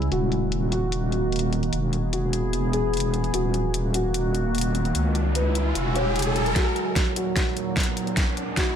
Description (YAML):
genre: heavy wobble dubstep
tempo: 149 BPM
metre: 4/4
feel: half-time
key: Eb phrygian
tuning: A4 = 440 Hz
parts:
  - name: felt-muted upright piano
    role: melody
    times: 0.0-8.8 s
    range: Gb4 to Db5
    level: -29 LUFS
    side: left 1 dB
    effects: low-pass filter, ping-pong delay
  - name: evolving wavetable pad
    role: sustained chords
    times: 0.0-8.8 s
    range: Eb2 to G#4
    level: -28 LUFS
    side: right 1 dB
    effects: chorus, built-in reverb, sidechain pumping
  - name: wobble bass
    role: bass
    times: 0.0-6.5 s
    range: Eb1 to Db2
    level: -25 LUFS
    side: equal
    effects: chorus, overdrive
  - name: dubstep drum kit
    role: drums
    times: 0.0-8.7 s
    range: hi-hat, snare drum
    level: -30 LUFS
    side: left 2 dB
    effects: overdrive, high-pass filter on hats, low-pass filter on hats, studio reverb, high-pass filter on snare, low-pass filter on snare
  - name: riser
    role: sound effects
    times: 4.1-8.8 s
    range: none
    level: -30 LUFS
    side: equal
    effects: none
  - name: electronic kick drum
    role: drums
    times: 6.6-8.7 s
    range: none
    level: -24 LUFS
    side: equal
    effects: overdrive, studio reverb
room: light reverb, digital ambience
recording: none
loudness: -22 LUFS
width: side -8 dB against mid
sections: 0.0-6.6 A section; 6.6-8.8 B section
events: riser 4.1-6.6, 6.6-8.8; build-up 6.6-8.8; drum fill 6.6-8.8; filter sweep on felt piano 6.6-8.8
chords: 0.1 Ebm; 1.7 E; 3.3 Ebm; 4.9 Dbm; 5.8 Eadd9; 6.6 Ebm; 8.2 E